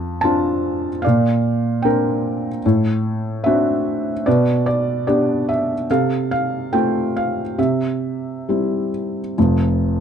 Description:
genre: classical, lyrical solo piano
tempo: 65-76 BPM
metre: 4/4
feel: rubato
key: unclear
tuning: A4 = 441 Hz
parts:
  - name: felt-muted upright piano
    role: solo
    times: 0.0-10.0 s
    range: F1 to A5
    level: -17 LUFS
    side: equal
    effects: none
room: light reverb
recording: dark, warm production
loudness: -17 LUFS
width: side -8 dB against mid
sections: 0.0-9.4 A section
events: none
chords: 0.0 Dm7/F; 1.0 Bbadd9; 2.6 D7/A; 4.3 G/B; 5.9 F/C; 7.6 C; 9.4 N.C.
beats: 0.22 1.04 1.84 | 2.64 3.45 4.26 5.07 | 5.89 6.72 7.58 8.48 | 9.37

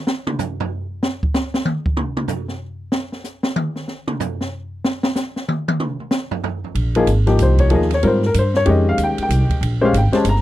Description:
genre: modal jazz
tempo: 189 BPM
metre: 3/4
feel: swing 63% on 8ths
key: Bb dorian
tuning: A4 = 440 Hz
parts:
  - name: open jazz drum kit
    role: drums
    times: 0.1-10.4 s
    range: hi-hat, kick drum, ride cymbal, snare drum, toms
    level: -22 LUFS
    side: equal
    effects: none
  - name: upright bass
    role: bass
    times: 6.7-10.4 s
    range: G1 to Ab2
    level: -16 LUFS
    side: right 1 dB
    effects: none
  - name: warm baby grand piano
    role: accompaniment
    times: 7.0-10.4 s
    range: Eb3 to Bb5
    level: -17 LUFS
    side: left 2 dB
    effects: none
room: little or no reverb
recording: dry, close 1970s-style studio recording, faint mains hum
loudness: -17 LUFS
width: side -14 dB against mid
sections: 0.0-6.8 A section; 6.8-10.4 A section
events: drum solo 0.0-6.8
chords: 0.0 N.C.; 6.8 Bb13sus4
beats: | 0.08 0.40 0.71 | 1.03 1.35 1.67 | 1.98 2.30 2.62 | 2.94 3.25 3.57 | 3.89 4.21 4.53 | 4.84 5.16 5.48 | 5.80 6.12 6.43 | 6.75 7.07 7.39 | 7.71 8.02 8.34 | 8.66 8.98 9.30 | 9.62 9.93 10.25

